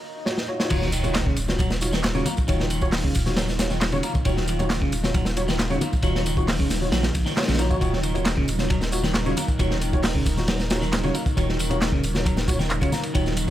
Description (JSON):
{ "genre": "breakbeat, breaks", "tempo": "135 BPM", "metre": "4/4", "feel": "straight", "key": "Eb minor", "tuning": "A4 = 441 Hz", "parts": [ { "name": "swell and impact", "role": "sound effects", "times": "0.0-2.5 s", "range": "none", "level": "-34 LUFS", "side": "right 1 dB", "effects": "none" }, { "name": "tine electric piano", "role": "stabs", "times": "0.3-13.5 s", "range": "Eb4 to Db5", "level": "-30 LUFS", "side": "left 1 dB", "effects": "ensemble chorus, tape echo" }, { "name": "crunchy breakbeat drum kit", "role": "drums", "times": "0.3-13.5 s", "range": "crash cymbal, hi-hat, kick drum, ride cymbal, snare drum", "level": "-24 LUFS", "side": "equal", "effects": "none" }, { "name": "warbly tape-like pad", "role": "sustained chords", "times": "1.4-13.5 s", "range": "Db3 to Bb4", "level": "-32 LUFS", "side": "right 1 dB", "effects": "chorus, built-in reverb, vintage 12-bit sampler grit, sidechain pumping" }, { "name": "clean electric guitar", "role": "riff", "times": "0.7-13.5 s", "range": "Db3 to Bb3", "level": "-29 LUFS", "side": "equal", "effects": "tube saturation, vintage 12-bit sampler grit, tape echo" }, { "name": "saturated sub bass", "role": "bass", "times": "0.7-13.5 s", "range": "Eb1 to Bb1", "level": "-27 LUFS", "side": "equal", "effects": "none" }, { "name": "electronic tambourine and handclaps", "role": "drums", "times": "0.7-13.5 s", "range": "none", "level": "-33 LUFS", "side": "right 1 dB", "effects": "none" }, { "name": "congas and bongos", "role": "percussion", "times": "1.0-13.5 s", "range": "none", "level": "-33 LUFS", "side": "left 2 dB", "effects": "none" } ], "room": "small room ambience", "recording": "none", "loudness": "-20 LUFS", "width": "side -12 dB against mid", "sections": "0.7-13.5 A section", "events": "break 0.0-0.7; swell 0.0-0.7; drum fill 0.3-0.7; drop 0.7-13.5; impact 0.7-2.5", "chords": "0.0 Ebm9" }